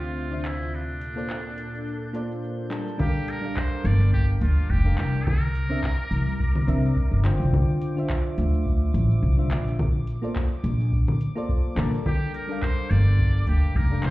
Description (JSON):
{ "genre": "sunset chillout", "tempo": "106 BPM", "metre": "4/4", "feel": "swing 56% on 16ths", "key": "G dorian", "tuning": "A4 = 441 Hz", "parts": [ { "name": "trumpet with metal mute", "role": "melody", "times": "0.0-7.2, 12.1-14.1 s", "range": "D4 to D5", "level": "-34 LUFS", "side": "equal", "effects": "ping-pong delay" }, { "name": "soft electric-piano-like synth keys", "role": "accompaniment", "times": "0.0-14.1 s", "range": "C3 to A5", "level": "-30 LUFS", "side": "left 1 dB", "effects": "chorus, auto-pan, ping-pong delay" }, { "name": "lush unison pad", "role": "sustained chords", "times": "0.0-3.0 s", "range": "D2 to A4", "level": "-33 LUFS", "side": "equal", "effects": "chorus" }, { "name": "smooth R&B drum kit", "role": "drums", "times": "0.0-14.1 s", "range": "cabasa, congas, crash cymbal, handclaps, hi-hat", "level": "-30 LUFS", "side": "equal", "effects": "none" }, { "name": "drifting glass-harmonics texture", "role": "texture", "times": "0.0-14.1 s", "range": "D6 to G6", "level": "-47 LUFS", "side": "equal", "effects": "chorus, built-in reverb" }, { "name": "electronic kick drum", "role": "drums", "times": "3.0-13.9 s", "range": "none", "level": "-25 LUFS", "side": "equal", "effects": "none" }, { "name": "upright bass", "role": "bass", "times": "3.8-14.1 s", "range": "F1 to Bb2", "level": "-21 LUFS", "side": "equal", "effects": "none" } ], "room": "little or no reverb", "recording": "heard muffled through a wall, club reverb, EQ", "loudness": "-22 LUFS", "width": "side -18 dB against mid", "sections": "0.0-3.0 A section; 3.0-14.1 B section", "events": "filter sweep on synth keys 0.0-3.0", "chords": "0.0 Dm7; 0.7 Bbmaj7; 3.0 Gm7; 5.3 C7; 7.5 Dm7; 9.8 Bbmaj7; 12.1 Gm7" }